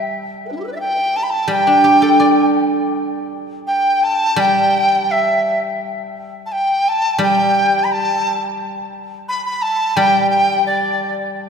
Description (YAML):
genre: chinese traditional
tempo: 85 BPM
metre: 4/4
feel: rubato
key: unclear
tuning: A4 = 441 Hz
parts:
  - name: guzheng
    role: accompaniment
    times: 0.0-11.5 s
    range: G3 to D5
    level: -20 LUFS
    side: equal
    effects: none
  - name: large dizi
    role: melody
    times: 0.4-11.2 s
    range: D4 to B5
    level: -15 LUFS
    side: equal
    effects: none
room: wet church reverb, RT60 3.6 s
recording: recorded in a church or concert hall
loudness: -14 LUFS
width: side -6 dB against mid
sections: 0.0-11.5 A section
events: none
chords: none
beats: | 0.07 0.78 1.49 2.21 | 2.94 3.66 4.38 5.10 | 5.81 6.52 7.21 7.91 | 8.60 9.29 9.98 10.68 | 11.37